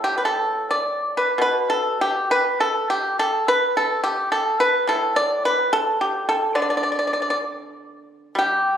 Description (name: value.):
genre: chinese traditional, Chinese solo plucked strings.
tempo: 65-72 BPM.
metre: 2/4.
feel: rubato.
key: unclear.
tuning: A4 = 439 Hz.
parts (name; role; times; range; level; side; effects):
pipa; solo; 0.0-8.8 s; A2 to D5; -19 LUFS; equal; none.
room: wet recital hall reverb, RT60 1.6 s.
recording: recorded on a phone in the room, club reverb.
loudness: -19 LUFS.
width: side -9 dB against mid.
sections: 0.0-8.4 A section.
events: none.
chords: none.